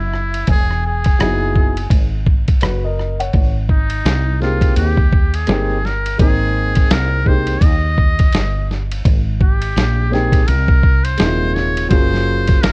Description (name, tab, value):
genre	hip hop, jazz-hop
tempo	84 BPM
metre	4/4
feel	swing 60% on 16ths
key	Ab major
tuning	A4 = 440 Hz
part	trumpet with metal mute	melody	0.0-12.7 s	Eb4 to Eb5	-22 LUFS	equal	none
part	vibraphone with medium hard mallets	second line	0.0-1.9 s	E5 to G#5	-28 LUFS	left 2 dB	none
part	woody fretless electric bass	bass	0.0-12.7 s	Eb1 to Eb2	-18 LUFS	equal	lush chorus
part	dusty soul sampler-style drum kit	drums	0.1-12.7 s	hi-hat, kick drum, ride cymbal, rim click, snare drum	-15 LUFS	equal	none
part	dark grand piano	accompaniment	1.2-12.7 s	C3 to F#5	-21 LUFS	left 1 dB	none
room	little or no reverb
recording	worn, warbling old tape, cassette tape, warbly pitch drift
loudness	-13 LUFS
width	side -28 dB against mid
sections	0.0-3.3 A section; 3.3-12.7 B section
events	muted trumpet solo 3.3-12.7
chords	0.0 Emaj9; 3.3 Abmaj9; 11.9 Gbmaj9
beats	| 0.48 1.19 1.91 2.62 | 3.34 4.05 4.76 5.48 | 6.19 6.91 7.62 8.34 | 9.05 9.76 10.48 11.19 | 11.91 12.62